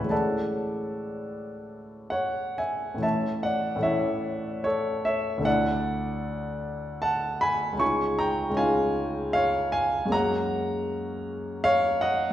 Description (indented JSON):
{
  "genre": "classical, impressionist solo piano",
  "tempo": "59-81 BPM",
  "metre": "3/4",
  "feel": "rubato",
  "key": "A major",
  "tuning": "A4 = 440 Hz",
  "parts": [
    { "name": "clear grand piano", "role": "solo", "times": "0.0-12.3 s", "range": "C#2 to C#6", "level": "-24 LUFS", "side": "equal", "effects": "none" }
  ],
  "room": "wet recital hall reverb, RT60 1.5 s",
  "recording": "heard from further back in the room",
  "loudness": "-24 LUFS",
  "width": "side -12 dB against mid",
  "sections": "0.0-3.0 A section; 3.0-12.3 B section",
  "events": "none",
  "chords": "0.1 Amaj7; 3.0 A; 5.5 Dadd9; 7.8 C#add9; 10.1 F#add9"
}